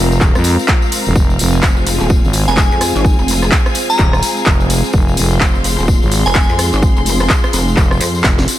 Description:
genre	bass house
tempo	127 BPM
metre	4/4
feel	swing 60% on 16ths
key	F minor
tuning	A4 = 440 Hz
part	dark analog pad	sustained chords	0.0-8.6 s	C4 to Bb4	-22 LUFS	equal	chorus, phaser, sidechain pumping
part	growling FM bass	bass	0.0-8.5 s	Eb1 to F2	-14 LUFS	equal	overdrive, sidechain pumping
part	clear symphonic string section	texture	0.0-8.6 s	Ab3 to C6	-23 LUFS	left 2 dB	sidechain pumping
part	tambourine	percussion	0.1-8.6 s	none	-24 LUFS	left 5 dB	none
part	electronic kick drum	drums	0.2-8.4 s	none	-13 LUFS	equal	overdrive
part	house drum kit	drums	0.2-8.6 s	handclaps, hi-hat, rim click, snare drum	-18 LUFS	equal	overdrive
part	pulsing pluck wobble bass	bass	1.6-8.2 s	Eb1 to F2	-16 LUFS	equal	chorus, tube saturation, sidechain pumping
part	glassy synth bell	melody	2.5-6.7 s	Ab5 to Bb5	-20 LUFS	equal	chorus, ping-pong delay
room	little or no reverb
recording	none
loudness	-11 LUFS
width	side -13 dB against mid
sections	0.0-8.6 A section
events	drum fill 8.2-8.6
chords	0.0 Fm

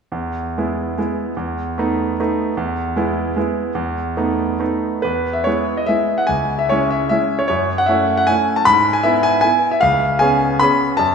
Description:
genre	classical, romantic triple-time dance for piano with dotted rhythms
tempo	133-166 BPM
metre	3/4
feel	rubato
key	E major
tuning	A4 = 442 Hz
part	clear concert grand piano	solo	0.1-11.1 s	C#2 to B5	-16 LUFS	equal	none
room	wet concert hall reverb, RT60 1.8 s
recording	recorded in a church or concert hall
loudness	-16 LUFS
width	side -6 dB against mid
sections	0.1-5.0 A section; 5.0-11.1 B section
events	none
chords	0.1 E; 1.4 B7/E; 2.6 E; 3.8 B7/E; 5.0 E; 6.3 C#m; 7.5 F#m7; 8.7 E/G#; 9.8 C#7

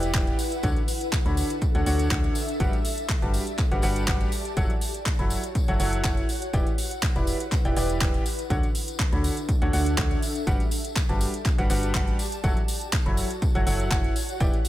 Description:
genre	piano house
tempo	122 BPM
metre	4/4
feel	swing 53% on 16ths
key	D major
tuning	A4 = 442 Hz
part	clear grand piano	riff	0.0-14.5 s	D3 to B5	-30 LUFS	equal	sidechain pumping, digital delay
part	organ-like FM bass	bass	0.0-14.5 s	E1 to D2	-27 LUFS	equal	sidechain pumping
part	garage drum kit	drums	0.0-14.7 s	handclaps, hi-hat	-32 LUFS	right 1 dB	none
part	tambourine	percussion	0.0-14.7 s	none	-40 LUFS	left 4 dB	none
part	ethereal airy pad	texture	0.0-14.7 s	D4 to A5	-34 LUFS	equal	ensemble chorus, built-in reverb, sidechain pumping
part	electronic kick drum	drums	0.1-14.5 s	none	-25 LUFS	equal	none
room	little or no reverb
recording	none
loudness	-22 LUFS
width	side -14 dB against mid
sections	0.0-14.7 A section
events	none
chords	0.0 Em7; 0.6 Dmaj7; 2.6 Gmaj7; 4.6 F#m7; 6.3 Em7; 8.5 Dmaj7; 10.5 Gmaj7; 12.4 F#m7; 14.2 Em7

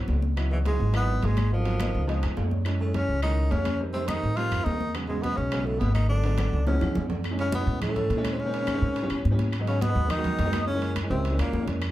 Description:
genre	Afro-Cuban jazz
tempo	210 BPM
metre	4/4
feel	straight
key	unclear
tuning	A4 = 442 Hz
part	clear tenor saxophone	melody	0.0-11.7 s	E3 to F4	-30 LUFS	left 1 dB	none
part	breathy trombone	second line	0.0-11.7 s	E2 to F3	-36 LUFS	right 2 dB	none
part	clear grand piano	accompaniment	0.0-11.9 s	C#3 to G#5	-32 LUFS	right 1 dB	none
part	upright bass	bass	0.0-11.9 s	G#1 to A#2	-26 LUFS	equal	none
part	congas	percussion	0.1-11.9 s	none	-33 LUFS	left 1 dB	none
part	timbales	percussion	0.1-11.9 s	none	-38 LUFS	right 3 dB	none
part	claves	percussion	0.4-11.9 s	none	-42 LUFS	left 4 dB	none
room	wet studio ambience, RT60 0.5 s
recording	heard from further back in the room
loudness	-23 LUFS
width	side -15 dB against mid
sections	0.0-7.2 A section; 7.2-11.9 B section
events	grand piano fill 2.1-2.7; drum fill 6.7-7.2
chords	0.4 C#m11; 1.5 G#m9; 2.1 C#7; 2.7 F#m9; 3.8 F9; 5.0 E69; 6.1 G#m7b5; 6.7 C#7; 7.2 F#m9; 8.4 A#m11; 9.0 A9; 9.5 G#m7; 10.7 F#9

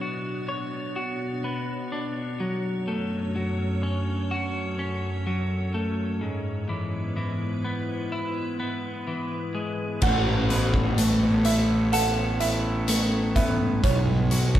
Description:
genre	post-rock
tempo	63 BPM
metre	4/4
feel	straight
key	A major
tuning	A4 = 442 Hz
part	icy glass pad	sustained chords	0.0-14.6 s	F#2 to F#5	-31 LUFS	right 1 dB	chorus, built-in reverb
part	twelve-string electric guitar	arpeggios	0.0-14.6 s	G#2 to C#5	-28 LUFS	left 2 dB	spring reverb
part	felt-muted upright piano	arpeggios	10.0-14.6 s	C#5 to F#5	-30 LUFS	right 6 dB	none
part	fuzz picked electric bass	bass	10.0-14.6 s	A1 to B1	-24 LUFS	right 1 dB	overdrive
part	huge arena drum kit	drums	10.0-14.6 s	crash cymbal, hi-hat, kick drum	-26 LUFS	equal	none
room	moderate large studio reverb, RT60 0.9 s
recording	band playing live in one room, lossy compression artefacts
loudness	-24 LUFS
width	side -12 dB against mid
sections	0.0-10.0 A section; 10.0-14.6 A section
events	none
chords	0.0 Bmadd9; 2.4 F#m; 6.2 E/G#; 10.0 Asus2; 13.8 Bsus2

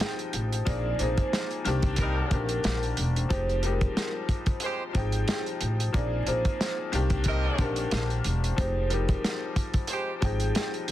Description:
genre	hip hop, boom-bap hip-hop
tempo	91 BPM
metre	4/4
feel	swing 55% on 16ths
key	F dorian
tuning	A4 = 441 Hz
part	vibraphone with soft mallets	melody	0.0-10.7 s	Ab4 to D5	-34 LUFS	right 2 dB	high-pass filter, low-pass filter, ping-pong delay
part	bright upright piano	accompaniment	0.0-10.9 s	D3 to G5	-32 LUFS	left 4 dB	high-pass filter, low-pass filter
part	warm soul drum kit	drums	0.0-10.9 s	hi-hat, kick drum, snare drum	-29 LUFS	equal	none
part	upright bass	bass	0.3-10.9 s	E1 to C2	-28 LUFS	equal	none
part	warm horn section	stabs	2.0-10.1 s	G3 to Eb5	-33 LUFS	right 2 dB	high-pass filter, low-pass filter, ping-pong delay
room	small room ambience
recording	dense, heavily limited modern master, vinyl crackle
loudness	-25 LUFS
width	side -13 dB against mid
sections	0.0-10.9 A section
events	none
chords	0.0 Fm9; 0.7 Bb7sus4; 1.7 Cm7; 3.3 Fm9; 5.9 Bb7sus4; 6.9 Cm7; 8.6 Fm9

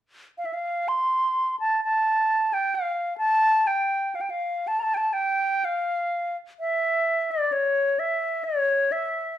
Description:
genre	celtic folk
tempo	61-68 BPM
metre	3/4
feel	rubato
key	unclear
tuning	A4 = 440 Hz
part	bright wooden flute	solo	0.4-9.4 s	C#5 to C6	-22 LUFS	equal	none
room	light reverb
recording	band playing live in one room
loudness	-22 LUFS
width	side -12 dB against mid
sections	0.9-3.7 A section; 3.7-9.4 B section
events	none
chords	none

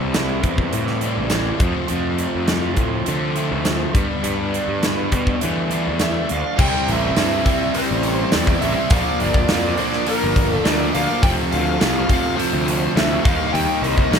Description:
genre	classic rock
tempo	103 BPM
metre	4/4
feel	straight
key	C mixolydian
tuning	A4 = 443 Hz
part	overdriven electric guitar	riff	0.0-14.2 s	F2 to E4	-25 LUFS	left 14 dB	none
part	raw garage guitar	riff	0.0-14.2 s	F2 to B4	-25 LUFS	right 16 dB	overdrive
part	fuzz picked electric bass	bass	0.0-14.2 s	F1 to E3	-24 LUFS	equal	overdrive
part	big rock drum kit	drums	0.1-14.2 s	crash cymbal, hi-hat, kick drum, snare drum	-21 LUFS	equal	none
part	bluesy overdriven lead guitar	melody	6.0-14.2 s	Bb4 to G5	-24 LUFS	left 1 dB	distortion
part	string machine, cellos	sustained chords	6.6-14.2 s	Bb3 to F5	-32 LUFS	equal	none
part	cranked stack guitar	riff	6.6-14.2 s	F2 to Eb4	-27 LUFS	right 1 dB	overdrive, spring reverb
room	light reverb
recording	none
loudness	-17 LUFS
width	side -7 dB against mid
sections	0.0-6.6 A section; 6.6-14.2 B section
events	none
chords	0.0 C; 1.6 F; 4.0 Gadd9; 6.6 C; 8.9 Bb; 11.2 F; 13.3 Eb

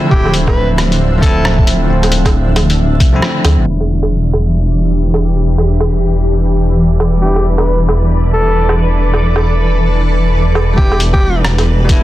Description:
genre	future garage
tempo	135 BPM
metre	4/4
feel	swing 62% on 16ths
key	E phrygian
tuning	A4 = 440 Hz
part	bell-like tine electric piano	accompaniment	0.0-12.0 s	F3 to F4	-21 LUFS	left 1 dB	sidechain pumping, tape echo
part	granular cloud pad	sustained chords	0.0-12.0 s	D3 to E5	-17 LUFS	equal	built-in reverb, sidechain pumping
part	bright alto saxophone	melody	0.1-1.7, 7.2-11.4 s	G4 to B4	-19 LUFS	equal	vintage 12-bit sampler grit, analog delay
part	swelling detuned saw bass	bass	0.1-12.0 s	D1 to D2	-13 LUFS	equal	none
part	electronic kick drum	drums	0.1-3.1, 10.8-12.0 s	none	-11 LUFS	equal	studio reverb
part	lo-fi sampler-style drum kit	drums	0.3-12.0 s	hi-hat, rim click, woodblock	-18 LUFS	right 2 dB	soft clipping on snare, studio reverb
part	backwards swelling texture	texture	5.3-12.0 s	A3 to D5	-25 LUFS	left 1 dB	built-in reverb
room	light reverb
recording	dense, heavily limited modern master, vinyl crackle, low-pass filter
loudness	-10 LUFS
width	side -15 dB against mid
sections	0.0-3.7 A section; 3.7-10.8 B section; 10.8-12.0 C section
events	kick drops out 3.2-3.7; band accent 3.2; filter sweep 3.7-10.8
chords	0.0 Dm7; 3.7 Em7

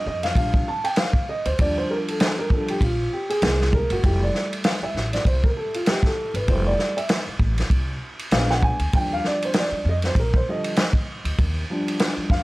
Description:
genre	hip hop, jazz-hop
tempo	98 BPM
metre	4/4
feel	swing 57% on 16ths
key	unclear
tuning	A4 = 440 Hz
part	dark upright piano	accompaniment	0.0-12.4 s	D3 to A5	-24 LUFS	right 1 dB	none
part	upright bass	bass	0.1-12.4 s	F1 to F2	-24 LUFS	equal	none
part	vintage drum kit	drums	0.2-12.4 s	hi-hat, kick drum, ride cymbal, snare drum	-22 LUFS	equal	none
room	light reverb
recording	dry, gritty hardware recording, vinyl crackle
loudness	-20 LUFS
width	side -20 dB against mid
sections	0.0-12.4 A section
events	upright piano solo 0.0-12.4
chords	0.0 Ebmaj9; 3.4 Caug7; 4.0 Fmaj9; 8.3 Bb7b9; 8.9 Ebmaj9

